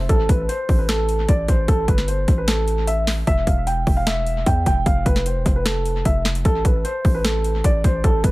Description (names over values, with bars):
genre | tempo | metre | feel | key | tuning
hip hop, trap | 151 BPM | 4/4 | half-time | unclear | A4 = 440 Hz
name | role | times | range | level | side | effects
distorted 808-style bass | bass | 0.0-8.3 s | E1 to E2 | -22 LUFS | equal | distortion
dark concert grand piano | melody | 0.1-8.3 s | A4 to G5 | -23 LUFS | right 1 dB | low-pass filter, dub echo
trap drum kit | drums | 0.1-8.3 s | finger snaps, hi-hat, kick drum, snare drum | -20 LUFS | equal | overdrive
room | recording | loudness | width
little or no reverb | echo-heavy mix | -17 LUFS | side -19 dB against mid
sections
0.1-8.3 A section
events
none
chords
0.1 Gsus2; 3.3 Em; 4.9 F; 6.5 N.C.